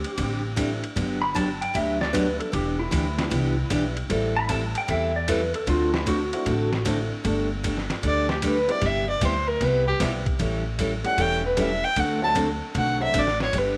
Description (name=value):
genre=country, western swing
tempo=153 BPM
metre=4/4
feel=swing 66% on 8ths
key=G major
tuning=A4 = 441 Hz
part: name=clean lap steel guitar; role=second line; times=0.0-6.8 s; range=E4 to B5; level=-30 LUFS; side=equal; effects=none
part: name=boom bap sampler-style drum kit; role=drums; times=0.0-13.7 s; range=hi-hat, kick drum, ride cymbal, snare drum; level=-33 LUFS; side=equal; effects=none
part: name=picked steel-string acoustic guitar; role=accompaniment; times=0.2-13.8 s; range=C3 to A4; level=-30 LUFS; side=equal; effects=none
part: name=upright bass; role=bass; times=0.2-13.8 s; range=E1 to E2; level=-31 LUFS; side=equal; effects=none
part: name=clear upright piano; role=accompaniment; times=0.6-13.1 s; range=F#3 to A4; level=-37 LUFS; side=equal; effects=none
part: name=warm fiddle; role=melody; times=8.1-13.8 s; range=G4 to A5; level=-26 LUFS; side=equal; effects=none
room=moderate echo chamber reverb, RT60 2.2 s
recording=none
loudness=-24 LUFS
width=mono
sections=0.0-7.3 A section; 7.3-13.8 A section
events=electric slide guitar solo 0.0-7.3; fiddle solo 7.3-13.8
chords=0.0 D9sus4; 1.0 Gmaj7; 2.5 Em7; 4.1 Am7; 5.7 D9; 7.3 Gsus2; 8.8 Cmaj7/G; 10.4 A7; 12.0 D7